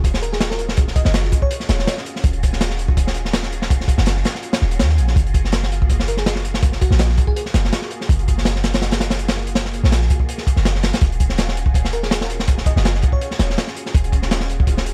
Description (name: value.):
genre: drum and bass, jungle.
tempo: 164 BPM.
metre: 4/4.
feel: swing 53% on 16ths.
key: Eb minor.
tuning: A4 = 440 Hz.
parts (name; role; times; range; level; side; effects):
soft string machine; sustained chords; 0.0-14.9 s; Bb3 to Ab4; -34 LUFS; equal; phaser, ensemble chorus.
warm 808-style bass; bass; 0.0-14.9 s; Eb1 to Eb2; -22 LUFS; equal; none.
crunchy breakbeat drum kit; drums; 0.0-14.9 s; hi-hat, kick drum, snare drum; -20 LUFS; equal; none.
bell-like FM electric piano; melody; 0.2-1.9, 6.1-7.4, 11.9-13.6 s; Gb4 to Eb5; -31 LUFS; equal; chorus, dub echo.
room: small room ambience.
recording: vinyl crackle.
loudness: -19 LUFS.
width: mono.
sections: 0.0-14.9 A section.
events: none.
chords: 0.0 Ebm11; 5.2 Gbmaj9; 11.0 Ebm11.